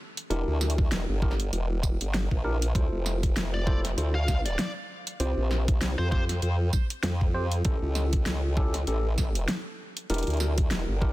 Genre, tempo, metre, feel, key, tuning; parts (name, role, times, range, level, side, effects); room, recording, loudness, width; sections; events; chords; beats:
glitch hop; 98 BPM; 4/4; swing 57% on 16ths; D minor; A4 = 440 Hz
pop drum kit; drums; 0.2-10.8 s; hi-hat, snare drum, tambourine; -33 LUFS; equal; overdrive
tine electric piano; stabs; 0.3-11.1 s; C4 to C5; -35 LUFS; left 1 dB; sidechain pumping, ping-pong delay
formant-sweep wobble bass; bass; 0.3-11.1 s; E1 to F2; -27 LUFS; equal; chorus, tube saturation
electronic kick drum; drums; 0.8-11.1 s; -26 LUFS; equal; overdrive
bluesy overdriven lead guitar; melody; 3.5-6.2 s; C5 to F5; -36 LUFS; left 1 dB; distortion, ping-pong delay
little or no reverb; dense, heavily limited modern master; -25 LUFS; side -17 dB against mid
0.0-11.1 A section
0.3 Em7b5; 2.8 Dm7; 5.2 Csus4; 7.7 A7; 10.1 Em7b5
| 0.30 0.92 1.53 2.14 | 2.75 3.36 3.98 4.59 | 5.20 5.81 6.43 7.04 | 7.65 8.26 8.88 9.49 | 10.10 10.71